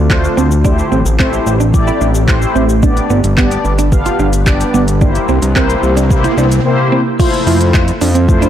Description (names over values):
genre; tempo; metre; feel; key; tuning
dance-pop; 110 BPM; 4/4; straight; F major; A4 = 440 Hz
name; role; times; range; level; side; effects
ethereal airy pad; sustained chords; 0.0-8.5 s; C3 to E5; -21 LUFS; equal; ensemble chorus, built-in reverb, phaser, sidechain pumping
fat analog bass; bass; 0.0-8.5 s; G1 to F2; -13 LUFS; equal; sidechain pumping
impact and riser; sound effects; 4.4-6.6 s; none; -28 LUFS; right 2 dB; none
mellow synth brass; accompaniment; 0.1-8.5 s; A3 to F5; -16 LUFS; left 2 dB; chorus, sidechain pumping
smooth R&B drum kit; drums; 0.1-8.5 s; crash cymbal, handclaps, hi-hat, kick drum, shaker; -15 LUFS; equal; overdrive
clean electric guitar; riff; 0.4-8.5 s; B3 to F4; -17 LUFS; right 6 dB; wide subtle chorus
room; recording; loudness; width
light reverb; blown-out, overdriven recording, overdrive; -10 LUFS; side -10 dB against mid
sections
0.0-7.2 A section; 7.2-8.5 B section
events
impact 0.0-0.6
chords
0.0 Dm7; 0.6 Am7; 2.8 G; 5.0 C7; 7.2 Fmaj7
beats
0.10 | 0.65 1.20 1.74 2.29 | 2.83 3.38 3.92 4.47 | 5.01 5.56 6.10 6.65 | 7.20 7.74 8.29